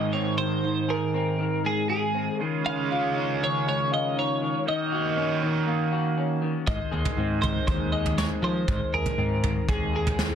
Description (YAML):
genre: indie rock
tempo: 120 BPM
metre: 4/4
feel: straight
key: Ab mixolydian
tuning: A4 = 444 Hz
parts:
  - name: twelve-string electric guitar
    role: melody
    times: 0.0-10.3 s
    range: Ab4 to F5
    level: -29 LUFS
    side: equal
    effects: analog chorus, digital delay
  - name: crunchy overdriven guitar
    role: riff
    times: 0.0-10.3 s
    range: Ab2 to C5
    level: -28 LUFS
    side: right 6 dB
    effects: lush chorus, digital delay
  - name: electric guitar through a small old amp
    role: riff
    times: 0.0-10.3 s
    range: Eb3 to Ab4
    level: -30 LUFS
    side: left 8 dB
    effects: lush chorus
  - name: growling picked electric bass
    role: bass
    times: 6.7-10.3 s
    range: Eb2 to F3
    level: -28 LUFS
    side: equal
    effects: overdrive
  - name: soft brush drum kit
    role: drums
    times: 6.7-10.3 s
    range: kick drum, snare drum, toms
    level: -28 LUFS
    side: equal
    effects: none
room: light reverb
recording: dense, heavily limited modern master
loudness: -23 LUFS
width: side -8 dB against mid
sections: 0.0-10.3 A section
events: none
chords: 0.0 Ab; 2.4 Dbadd9; 4.7 Ebm7; 6.7 Ab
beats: 0.14 | 0.64 1.14 1.65 2.15 | 2.65 3.15 3.66 4.16 | 4.66 5.17 5.67 6.17 | 6.67 7.17 7.67 8.18 | 8.68 9.18 9.68 10.18